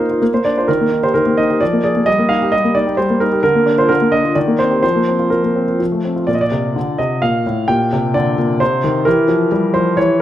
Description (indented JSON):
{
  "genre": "classical-period piano sonatina",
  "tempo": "130 BPM",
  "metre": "3/4",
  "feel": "rubato",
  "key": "Eb major, Bb major from 3.4 s",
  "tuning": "A4 = 440 Hz",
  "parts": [
    { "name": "clear concert grand piano", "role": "solo", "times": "0.0-10.2 s", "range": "A2 to G5", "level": "-13 LUFS", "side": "equal", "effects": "none" }
  ],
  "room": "moderate recital hall reverb, RT60 1.5 s",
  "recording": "none",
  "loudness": "-13 LUFS",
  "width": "side -12 dB against mid",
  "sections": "0.0-6.3 A section; 6.3-10.2 B section",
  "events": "none",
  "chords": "0.2 Bb; 0.7 Eb; 1.6 Bb7/F; 2.1 Eb/G; 3.4 Bb/D; 4.4 Cm7/Eb; 4.8 Fsus4; 5.8 F; 6.3 Bb; 7.7 Gm/Bb; 8.6 Cm; 9.1 Edim",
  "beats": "0.21 | 0.68 1.15 1.61 | 2.07 2.53 2.99 | 3.44 3.90 4.36 | 4.83 5.32 5.80 | 6.28 6.76 7.22 | 7.69 8.15 8.61 | 9.06 9.51 9.98"
}